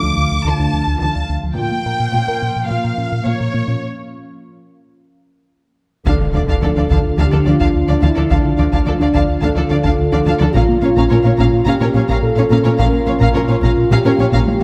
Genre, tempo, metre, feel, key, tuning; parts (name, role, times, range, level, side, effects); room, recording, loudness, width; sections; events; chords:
cinematic, hybrid orchestral and electronic film score; 107 BPM; 4/4; straight; D harmonic minor; A4 = 439 Hz
warm symphonic violin section; melody; 0.0-14.4 s; Db5 to D6; -27 LUFS; equal
warbly tape-like pad; sustained chords; 0.0-14.6 s; F3 to F5; -26 LUFS; equal; chorus, built-in reverb, phaser
harp-like synth pluck; arpeggios; 0.0-14.6 s; D3 to Bb4; -26 LUFS; equal; chorus, phaser
round analog bass; riff; 0.0-14.6 s; D2 to Bb3; -22 LUFS; equal
dark symphonic cello section; bass; 0.0-14.4 s; Bb2 to D3; -24 LUFS; equal
warm symphonic violin section; second line; 6.1-14.4 s; A4 to F5; -28 LUFS; equal
dark symphonic viola section; accompaniment; 6.1-14.4 s; Db4 to D4; -26 LUFS; equal
dark French horn section; sustained chords; 6.1-14.6 s; D4 to Bb4; -22 LUFS; equal
warm symphonic double bass section; bass; 6.1-14.2 s; Bb1 to D2; -25 LUFS; equal
solo taiko drums; drums; 6.1-14.6 s; -23 LUFS; equal
impact; sound effects; 6.1-8.3 s; -28 LUFS; equal
wet scoring stage reverb, RT60 1.5 s; -15 LUFS; mono
0.0-6.1 A section; 6.1-14.6 A section
break 3.8-6.1; impact 6.1-8.3; drum fill 14.5
0.0 Dm; 1.6 Bb5; 6.1 Dm; 10.6 Bbm